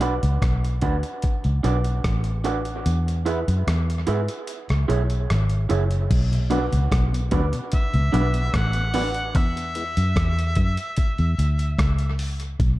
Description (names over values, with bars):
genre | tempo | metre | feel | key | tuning
dub reggae | 74 BPM | 4/4 | straight | B dorian | A4 = 440 Hz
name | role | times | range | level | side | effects
electric guitar through a small old amp | accompaniment | 0.0-9.1 s | D4 to E5 | -28 LUFS | right 4 dB | high-pass filter, tape echo
vintage muted fingered electric bass | bass | 0.0-12.8 s | F#1 to G#2 | -22 LUFS | equal | none
dusty soul sampler-style drum kit | drums | 0.0-12.8 s | crash cymbal, hi-hat, kick drum, rim click | -26 LUFS | equal | none
mellow tonewheel organ | accompaniment | 6.3-12.3 s | E2 to E4 | -30 LUFS | left 3 dB | slow rotary speaker, high-pass filter
mellow harmonica | melody | 7.7-12.2 s | E5 to F#5 | -29 LUFS | equal | tape echo
room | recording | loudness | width
light reverb | dark, warm production | -20 LUFS | side -17 dB against mid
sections
0.0-6.1 A section; 6.1-12.8 B section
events
kick muted 2.9-6.1; filter sweep 6.1-12.8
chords
0.0 Bm; 2.9 E; 4.5 C#m; 6.1 Bm; 9.4 E; 11.0 C#m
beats
0.42 1.23 2.04 | 2.86 3.67 4.48 5.29 | 6.11 6.92 7.73 8.54 | 9.35 10.16 10.98 11.79 | 12.60